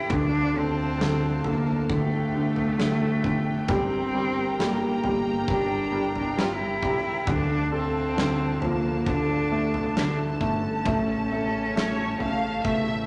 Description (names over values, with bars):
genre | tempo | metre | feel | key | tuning
pop ballad | 67 BPM | 4/4 | straight | D minor | A4 = 442 Hz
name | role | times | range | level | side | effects
rich cello | melody | 0.0-13.1 s | A3 to F4 | -31 LUFS | equal | none
felt-muted upright piano | accompaniment | 0.0-13.1 s | D3 to A4 | -29 LUFS | equal | none
warm studio string section | sustained chords | 0.0-13.1 s | C#3 to Bb5 | -35 LUFS | equal | none
chorused synth bass | bass | 0.0-13.1 s | F1 to D2 | -38 LUFS | equal | none
huge arena drum kit | drums | 0.1-13.1 s | kick drum, snare drum, toms | -34 LUFS | equal | none
rich studio violin section | second line | 11.3-13.1 s | A4 to F5 | -33 LUFS | equal | none
room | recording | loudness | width
wet large studio reverb, RT60 1.4 s | none | -25 LUFS | mono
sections
0.0-13.1 A section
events
drum fill 12.6-13.1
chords
0.1 Dm; 3.7 Gm; 7.3 Dm; 10.9 A